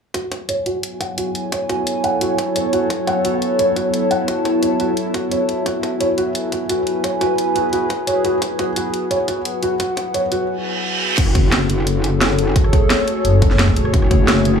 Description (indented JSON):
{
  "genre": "dark technical drum and bass",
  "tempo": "174 BPM",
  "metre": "4/4",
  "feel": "straight",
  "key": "F# minor",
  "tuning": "A4 = 440 Hz",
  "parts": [
    { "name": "dark analog pad", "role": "sustained chords", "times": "1.2-14.6 s", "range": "F#4 to A5", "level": "-23 LUFS", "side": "equal", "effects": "chorus, phaser, sidechain pumping" },
    { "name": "felt-muted upright piano", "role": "arpeggios", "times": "0.1-10.4 s", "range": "F#4 to F#5", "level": "-22 LUFS", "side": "right 2 dB", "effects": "sidechain pumping, low-pass filter, tape echo" },
    { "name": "drum and bass drum kit", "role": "drums", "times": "0.1-14.5 s", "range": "crash cymbal, hi-hat, rim click, snare drum", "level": "-23 LUFS", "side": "equal", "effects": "overdrive" },
    { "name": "electronic kick drum", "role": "drums", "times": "0.1-14.2 s", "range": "none", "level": "-19 LUFS", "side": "equal", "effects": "overdrive, high-pass filter on kick, high-pass filter on room" },
    { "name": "warbly tape-like pad", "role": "texture", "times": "1.1-14.6 s", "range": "F#3 to C#5", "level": "-22 LUFS", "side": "left 2 dB", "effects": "chorus, built-in reverb, phaser, sidechain pumping" },
    { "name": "reverse cymbal", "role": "sound effects", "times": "10.6-11.2 s", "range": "none", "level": "-22 LUFS", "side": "right 5 dB", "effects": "none" },
    { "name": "metallic wobble bass", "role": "bass", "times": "11.2-14.6 s", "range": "F#1", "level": "-17 LUFS", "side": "equal", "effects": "chorus, tube saturation, sidechain pumping" },
    { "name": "growling FM bass", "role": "bass", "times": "13.2-13.9 s", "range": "F#1", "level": "-15 LUFS", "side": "equal", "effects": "none" }
  ],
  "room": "moderate lush hall reverb, RT60 1.9 s, digital ambience",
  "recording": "small room reverb",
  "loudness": "-16 LUFS",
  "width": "side -6 dB against mid",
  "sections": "0.1-11.2 A section; 11.2-14.6 B section",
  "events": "filter sweep on felt piano 0.1-11.2; reverse cymbal 10.6-11.2; drop 11.2-14.6",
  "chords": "0.1 F#madd9"
}